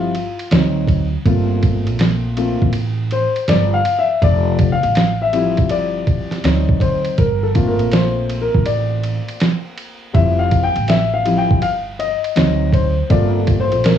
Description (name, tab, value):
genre	hip hop, jazz-hop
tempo	81 BPM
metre	4/4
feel	swing 65% on 16ths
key	G dorian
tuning	A4 = 442 Hz
part	dark upright piano	accompaniment	0.0-14.0 s	F3 to G5	-18 LUFS	left 4 dB	cassette tape, plate reverb
part	upright bass	bass	0.0-14.0 s	F1 to D2	-19 LUFS	right 2 dB	none
part	lo-fi sampler-style drum kit	drums	0.1-14.0 s	hi-hat, kick drum, ride cymbal, snare drum	-19 LUFS	right 2 dB	cassette tape
room	moderate small room ambience, RT60 0.5 s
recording	home recording on cassette, studio ambience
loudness	-14 LUFS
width	side -9 dB against mid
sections	0.0-14.0 A section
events	upright piano solo 0.0-14.0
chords	0.0 Fmaj7sus2; 0.5 D7b9; 1.3 Gm11; 4.2 Dm11/F; 6.4 D7b9; 7.2 Gm11; 10.1 Fmaj9; 12.4 D7b9; 13.1 Gm11